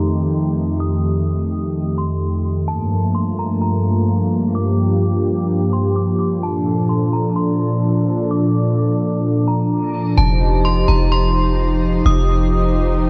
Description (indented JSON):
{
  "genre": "hip hop",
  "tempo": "128 BPM",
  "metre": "4/4",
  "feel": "half-time",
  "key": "unclear",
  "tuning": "A4 = 438 Hz",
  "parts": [
    { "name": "metallic FM bell", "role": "melody", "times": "0.0-13.1 s", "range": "A5 to Eb6", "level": "-29 LUFS", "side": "equal", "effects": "chorus, low-pass filter, tape echo" },
    { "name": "warm analog pad", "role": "sustained chords", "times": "0.0-13.1 s", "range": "F2 to C5", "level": "-19 LUFS", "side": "equal", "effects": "lush chorus" },
    { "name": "warm 808-style bass", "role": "bass", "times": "10.2-13.1 s", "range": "F1", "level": "-18 LUFS", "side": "equal", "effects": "none" }
  ],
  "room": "light reverb",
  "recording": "worn, warbling old tape, cassette tape, warbly pitch drift, low-pass filter",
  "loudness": "-18 LUFS",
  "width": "mono",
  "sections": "0.0-10.2 A section; 10.2-13.1 B section",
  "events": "filter sweep 0.0-10.2",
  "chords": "0.0 F9; 2.7 Gm9; 6.4 Bbmaj7; 10.2 F7sus2"
}